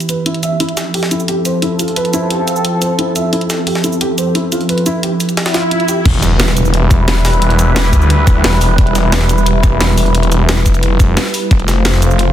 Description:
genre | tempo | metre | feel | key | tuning
dark technical drum and bass | 176 BPM | 4/4 | straight | E phrygian | A4 = 438 Hz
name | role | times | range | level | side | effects
sweeping resonant pad | sustained chords | 0.0-12.3 s | E3 to C5 | -17 LUFS | right 1 dB | chorus, sidechain pumping
drum and bass drum kit | drums | 0.0-12.3 s | crash cymbal, hi-hat, shaker, snare drum | -18 LUFS | equal | studio reverb
felt-muted upright piano | arpeggios | 0.1-6.0 s | E4 to E5 | -19 LUFS | right 1 dB | sidechain pumping, low-pass filter, digital delay
jungle sampler-style drum kit | drums | 0.6-12.3 s | hi-hat, snare drum | -24 LUFS | equal | high-pass filter on hats, studio reverb, high-pass filter on snare
swell and impact | sound effects | 5.5-7.4 s | none | -18 LUFS | left 1 dB | none
snarling distorted saw bass | bass | 6.1-12.3 s | E1 to D2 | -12 LUFS | equal | distortion, tube saturation, sidechain pumping
electronic kick drum | drums | 6.1-11.6 s | none | -11 LUFS | equal | studio reverb
room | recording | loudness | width
light reverb | dense, heavily limited modern master | -11 LUFS | side -11 dB against mid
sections
0.0-6.1 A section; 6.1-12.3 B section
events
swell 5.5-6.1; drop 6.1-12.3; impact 6.1-7.4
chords
0.0 Em; 0.6 F; 6.1 Em; 11.5 F

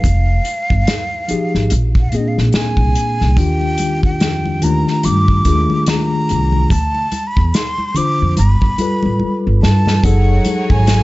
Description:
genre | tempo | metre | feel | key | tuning
R&B, neo-soul | 72 BPM | 4/4 | swing 59% on 16ths | unclear | A4 = 438 Hz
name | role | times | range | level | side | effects
breathy jazz flute | melody | 0.0-11.0 s | D#5 to D6 | -21 LUFS | equal | slapback echo
mellow tine electric piano | accompaniment | 0.0-11.0 s | A#2 to C5 | -18 LUFS | left 2 dB | medium stereo tremolo
unplugged drum kit | drums | 0.0-11.0 s | hi-hat, kick drum, snare drum | -18 LUFS | equal | none
upright bass | bass | 0.1-11.0 s | F1 to G2 | -15 LUFS | equal | none
congas | percussion | 3.4-11.0 s | none | -26 LUFS | right 2 dB | none
bright studio string section | sustained chords | 10.0-11.0 s | F#3 to C#5 | -26 LUFS | right 1 dB | none
room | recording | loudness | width
small room ambience | nothing above 7.7 kHz | -13 LUFS | side -19 dB against mid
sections
0.0-10.0 A section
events
drum fill 9.2-10.0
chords
0.0 Fm9; 1.7 A#7; 3.4 D#maj9; 6.7 Dm7; 8.4 G9; 10.0 F#m69

